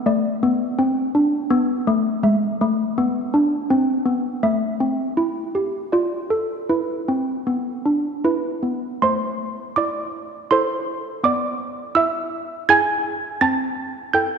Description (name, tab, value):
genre	classical, tune for handbells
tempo	82 BPM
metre	3/4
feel	straight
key	A minor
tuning	A4 = 440 Hz
part	malleted handbells	solo	0.0-14.4 s	G#3 to A6	-19 LUFS	equal	none
room	wet church reverb, RT60 2.7 s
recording	none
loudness	-19 LUFS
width	side -6 dB against mid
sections	0.0-9.0 A section; 9.0-14.4 B section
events	none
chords	0.0 Amadd11; 2.2 E7/G#; 4.4 Am; 5.9 Dm/F; 6.7 E5; 9.0 Am; 11.2 E7/B; 13.4 Am/C